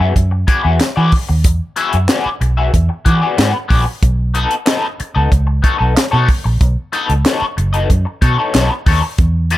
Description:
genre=funk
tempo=93 BPM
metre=4/4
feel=straight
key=unclear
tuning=A4 = 440 Hz
part: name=electric guitar at the edge of break-up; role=accompaniment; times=0.0-9.6 s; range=B3 to E5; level=-18 LUFS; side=left 4 dB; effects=wah
part: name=vintage muted fingered electric bass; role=bass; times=0.0-9.6 s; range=F#1 to E3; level=-14 LUFS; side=right 1 dB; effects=none
part: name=tight funk drum kit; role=drums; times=0.2-9.6 s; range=handclaps, hi-hat, kick drum, snare drum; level=-15 LUFS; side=equal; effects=none
room=studio reverb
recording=none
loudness=-12 LUFS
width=side -15 dB against mid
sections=0.0-9.6 A section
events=none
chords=0.0 E9; 4.0 B9

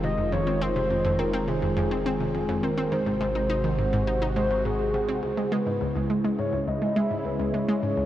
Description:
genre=ambient, sequencer-driven space music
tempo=104 BPM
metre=4/4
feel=straight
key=unclear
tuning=A4 = 440 Hz
part: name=soft octave-layered synth lead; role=melody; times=0.0-8.1 s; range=Ab4 to E5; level=-28 LUFS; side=equal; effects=chorus, cassette tape, analog delay
part: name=sweeping resonant pad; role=sustained chords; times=0.0-8.1 s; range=C3 to Gb4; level=-29 LUFS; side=right 1 dB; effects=chorus
part: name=analog pluck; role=riff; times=0.0-8.0 s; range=C#2 to Eb4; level=-28 LUFS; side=equal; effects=chorus, analog delay
part: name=warm sub bass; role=bass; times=0.0-5.2 s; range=F1 to Ab1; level=-32 LUFS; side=equal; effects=none
room=wet huge ambient reverb, RT60 9.7 s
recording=worn, warbling old tape, cassette tape, warbly pitch drift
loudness=-23 LUFS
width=side -13 dB against mid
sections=0.0-5.2 A section; 5.2-8.1 B section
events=none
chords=0.0 Fm7; 2.9 Ab7; 5.2 C#m

